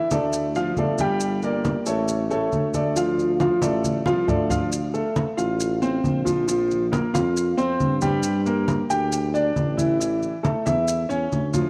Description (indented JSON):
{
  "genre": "latin, Cuban son and guajira",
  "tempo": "136 BPM",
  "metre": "4/4",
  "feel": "straight",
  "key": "D minor",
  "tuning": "A4 = 444 Hz",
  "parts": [
    { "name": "warm grand piano", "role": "arpeggios", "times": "0.0-11.7 s", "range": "E3 to G5", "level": "-25 LUFS", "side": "equal", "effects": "none" },
    { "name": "warm tuba", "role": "bass", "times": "0.1-11.7 s", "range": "G1 to G2", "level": "-29 LUFS", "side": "equal", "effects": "none" },
    { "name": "congas", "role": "percussion", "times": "0.1-11.7 s", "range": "none", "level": "-29 LUFS", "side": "equal", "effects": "none" },
    { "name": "maracas", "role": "percussion", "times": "0.1-11.7 s", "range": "none", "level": "-37 LUFS", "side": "equal", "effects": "none" }
  ],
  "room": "wet plate reverb, RT60 3.0 s",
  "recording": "none",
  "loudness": "-23 LUFS",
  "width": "mono",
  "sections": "0.0-4.7 A section; 4.7-11.7 B section",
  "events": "drum fill 3.8-4.7",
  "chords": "0.3 Dm; 1.2 Gm; 2.1 A; 3.0 Dm; 4.7 Dm7; 6.5 Bbsus2; 8.2 Gm; 10.0 A"
}